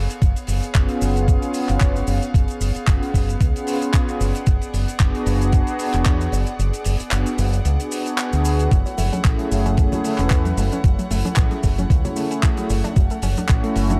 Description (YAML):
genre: nu-disco, nu disco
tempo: 113 BPM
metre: 4/4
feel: swing 55% on 16ths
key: F# minor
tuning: A4 = 445 Hz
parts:
  - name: rich chamber string section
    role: sustained chords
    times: 0.0-14.0 s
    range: A3 to F#5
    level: -33 LUFS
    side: equal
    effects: sidechain pumping
  - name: fingered electric bass with an envelope filter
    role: bass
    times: 0.0-14.0 s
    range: E1 to E2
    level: -23 LUFS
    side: equal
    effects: sidechain pumping
  - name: damped 70s drum kit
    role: drums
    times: 0.1-14.0 s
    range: handclaps, hi-hat, shaker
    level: -32 LUFS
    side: equal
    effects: none
  - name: electronic kick drum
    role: drums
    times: 0.2-13.6 s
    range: none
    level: -20 LUFS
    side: equal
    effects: none
  - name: warm analog pad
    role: accompaniment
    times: 0.7-14.0 s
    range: A3 to C#5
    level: -28 LUFS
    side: equal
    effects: chorus, sidechain pumping, digital delay
  - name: unison pluck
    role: arpeggios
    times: 8.7-14.0 s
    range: E3 to D4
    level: -32 LUFS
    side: equal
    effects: sidechain pumping, tape echo
  - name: congas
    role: percussion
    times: 9.0-14.0 s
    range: none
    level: -32 LUFS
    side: equal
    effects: none
room: light reverb, small room reverb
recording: dark, warm production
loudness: -20 LUFS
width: mono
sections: 0.0-14.0 A section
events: kick drops out 6.6-8.7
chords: 0.0 C#7/F#; 4.2 G#m7b5; 8.7 F#m7; 12.7 Dmaj7